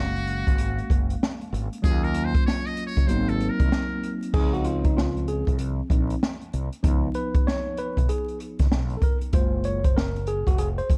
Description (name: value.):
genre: hip hop, jazz-hop.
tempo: 96 BPM.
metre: 4/4.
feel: swing 63% on 16ths.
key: Db major.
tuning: A4 = 442 Hz.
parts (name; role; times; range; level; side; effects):
trumpet with metal mute; melody; 0.0-4.1 s; Gb4 to Eb5; -35 LUFS; equal; none.
tine electric piano; accompaniment; 0.0-10.9 s; F3 to F5; -31 LUFS; equal; overdrive.
fretless electric bass; bass; 0.0-11.0 s; F1 to Eb2; -30 LUFS; equal; none.
open jazz drum kit; drums; 0.2-11.0 s; crash cymbal, hi-hat, kick drum, snare drum; -26 LUFS; equal; none.
room: small room ambience.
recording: dark, warm production, vinyl crackle.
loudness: -24 LUFS.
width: mono.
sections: 0.0-4.3 A section; 4.3-11.0 A section.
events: muted trumpet solo 0.0-4.3; tine electric piano solo 4.3-11.0.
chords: 0.0 Gbmaj9; 1.8 Ebm7; 3.1 Ab7; 4.3 Dbmaj7; 6.8 Db7; 9.3 Gbmaj9.